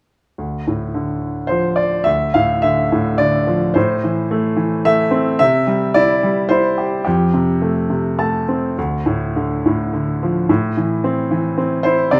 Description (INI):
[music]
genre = classical, lyrical solo piano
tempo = 107 BPM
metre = 3/4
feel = uneven beats, rubato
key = D minor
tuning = A4 = 440 Hz
[part]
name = clear concert grand piano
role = solo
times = 0.4-12.2 s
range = D2 to A5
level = -17 LUFS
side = equal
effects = none
[sound]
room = moderate recital hall reverb, RT60 1.4 s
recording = none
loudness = -17 LUFS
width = mono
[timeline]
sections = 0.4-2.1 A section; 2.1-12.2 B section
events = grand piano fill 7.9-8.8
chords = 0.4 Dm; 3.8 Am; 5.4 C; 7.1 Fadd9; 8.8 Dm; 10.5 Am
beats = | 0.38 0.94 1.49 | 2.06 2.63 3.19 | 3.76 4.31 4.86 | 5.40 5.96 6.51 | 7.06 7.61 8.18 | 8.77 9.36 9.93 | 10.49 11.03 11.58 | 12.13